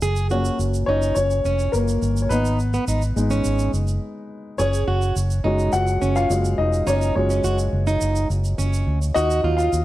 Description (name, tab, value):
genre	piano-driven pop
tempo	105 BPM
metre	4/4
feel	straight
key	F# major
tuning	A4 = 440 Hz
part	dark upright piano	accompaniment	0.0-9.8 s	F#3 to F#5	-23 LUFS	left 2 dB	none
part	fingerpicked plugged-in steel-string acoustic guitar	riff	0.0-9.7 s	B3 to G#4	-26 LUFS	right 3 dB	none
part	vintage muted fingered electric bass	bass	0.0-9.8 s	E#1 to D#2	-22 LUFS	equal	none
part	tube shaker	percussion	0.0-9.8 s	none	-36 LUFS	right 6 dB	none
room	light reverb, small room ambience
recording	dark, warm production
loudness	-18 LUFS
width	side -15 dB against mid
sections	0.0-4.6 A section; 4.6-9.8 B section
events	upright piano solo 0.0-4.6, 4.6-9.8; stop 4.0-4.6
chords	0.0 F#; 2.3 G#m; 4.6 F#sus2; 9.2 D#madd9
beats	| 0.02 0.59 1.16 1.73 | 2.31 2.88 3.45 4.02 | 4.59 5.16 5.73 6.30 | 6.87 7.44 8.01 8.59 | 9.16 9.73